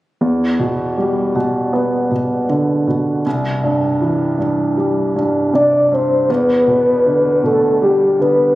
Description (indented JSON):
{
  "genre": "pop",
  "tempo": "79 BPM",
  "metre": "4/4",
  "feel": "straight",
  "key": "E minor",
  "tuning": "A4 = 440 Hz",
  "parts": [
    { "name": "warm concert grand piano", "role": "accompaniment", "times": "0.2-8.6 s", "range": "C2 to B3", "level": "-16 LUFS", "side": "right 1 dB", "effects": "none" },
    { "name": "soft octave-layered synth lead", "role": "melody", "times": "5.5-8.6 s", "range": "G4 to D5", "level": "-12 LUFS", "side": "left 1 dB", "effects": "chorus, tremolo" }
  ],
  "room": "moderate lush hall reverb, RT60 3.2 s",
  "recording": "recorded on a phone in the room, studio ambience, compression",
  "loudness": "-13 LUFS",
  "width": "side -16 dB against mid",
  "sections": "0.2-6.3 A section; 6.3-8.6 B section",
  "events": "none",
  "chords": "0.2 Em7; 3.3 C; 6.3 Em7"
}